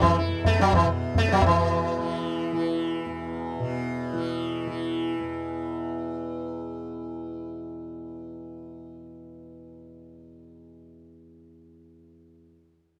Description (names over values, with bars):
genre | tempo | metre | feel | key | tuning
indian classical, Hindustani | 107 BPM | 7/4 | straight | unclear | A4 = 441 Hz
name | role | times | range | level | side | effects
sitar | melody | 0.0-5.1 s | E3 to E4 | -27 LUFS | equal | none
tanpura | drone | 0.0-12.3 s | E2 to E3 | -34 LUFS | equal | none
tabla | percussion | 0.0-1.6 s | none | -27 LUFS | equal | none
room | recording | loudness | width
wet small room reverb, RT60 0.5 s | none | -27 LUFS | mono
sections
0.0-1.4 A section; 1.4-5.3 B section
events
none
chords
none